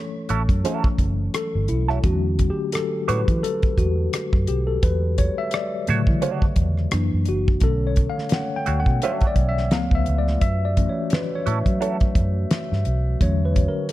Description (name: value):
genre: R&B, neo-soul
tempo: 86 BPM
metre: 4/4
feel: swing 57% on 16ths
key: unclear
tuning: A4 = 445 Hz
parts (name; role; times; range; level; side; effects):
- mellow tine electric piano; accompaniment; 0.0-13.9 s; C#3 to G5; -25 LUFS; left 3 dB; medium stereo tremolo
- semi-hollow electric guitar; second line; 0.3-12.0 s; F#3 to C#5; -27 LUFS; right 7 dB; wah, harmonic tremolo
- vintage muted fingered electric bass; bass; 0.3-13.7 s; F#1 to F#3; -22 LUFS; equal; none
- damped 70s drum kit; drums; 0.3-13.9 s; hi-hat, kick drum, rim click, snare drum; -21 LUFS; equal; none
- glass harmonica; sustained chords; 7.6-13.9 s; A3 to E5; -33 LUFS; right 1 dB; none
room: little or no reverb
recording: dark, warm production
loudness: -19 LUFS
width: side -15 dB against mid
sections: 0.0-13.9 A section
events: tine electric piano solo 0.0-13.9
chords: 0.0 F#m7; 2.0 E13sus4; 6.9 F#aug7; 7.6 Bm9; 9.7 C#aug7; 10.4 F#m7; 13.2 E13sus4